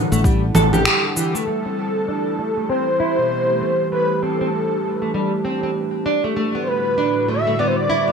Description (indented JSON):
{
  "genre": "organic downtempo",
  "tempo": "98 BPM",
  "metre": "4/4",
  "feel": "swing 60% on 16ths",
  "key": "A dorian",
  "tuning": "A4 = 440 Hz",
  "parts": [
    { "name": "warbly tape-like pad", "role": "sustained chords", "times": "0.0-8.1 s", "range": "A2 to F#5", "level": "-25 LUFS", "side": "right 2 dB", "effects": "chorus, built-in reverb, sidechain pumping" },
    { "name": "bronze singing bowl", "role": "texture", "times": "0.0-8.1 s", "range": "G3 to E4", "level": "-33 LUFS", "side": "equal", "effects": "none" },
    { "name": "nylon-string guitar", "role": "arpeggios", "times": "0.1-8.1 s", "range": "B2 to A4", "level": "-23 LUFS", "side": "right 1 dB", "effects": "wide subtle chorus, low-pass filter, ping-pong delay" },
    { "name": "fretless electric bass", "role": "bass", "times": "0.1-0.9 s", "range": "A1", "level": "-19 LUFS", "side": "left 1 dB", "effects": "analog chorus" },
    { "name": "electronic shaker, congas and finger snaps", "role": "drums", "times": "0.1-1.4 s", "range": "none", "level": "-18 LUFS", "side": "equal", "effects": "overdrive, gated reverb" },
    { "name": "breathy flute-like synth lead", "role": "melody", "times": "1.2-8.1 s", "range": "G4 to E5", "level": "-21 LUFS", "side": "left 1 dB", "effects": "analog chorus, digital delay" }
  ],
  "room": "wet plate reverb, RT60 1.6 s",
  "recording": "bright 1980s-style digital production",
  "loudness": "-17 LUFS",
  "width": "side -6 dB against mid",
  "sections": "0.0-1.5 A section; 1.5-8.1 B section",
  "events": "break 0.9-1.5; band accent 0.9-1.2; filter sweep on nylon-string guitar 1.5-8.1",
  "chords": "0.0 Em9; 1.5 Am7; 6.4 Em9/A"
}